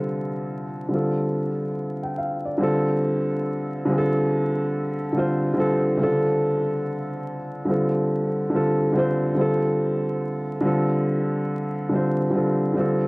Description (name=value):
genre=hip hop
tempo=71 BPM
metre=4/4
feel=swing 63% on 16ths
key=unclear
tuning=A4 = 435 Hz
part: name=dark upright piano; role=solo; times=0.0-13.1 s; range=C#3 to G5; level=-21 LUFS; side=equal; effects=cassette tape, low-pass filter, tape echo
room=moderate plate reverb, RT60 3.1 s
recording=worn, warbling old tape, cassette tape, vinyl crackle, warbly pitch drift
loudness=-21 LUFS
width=side -26 dB against mid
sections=0.0-13.1 A section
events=none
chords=0.0 F69/D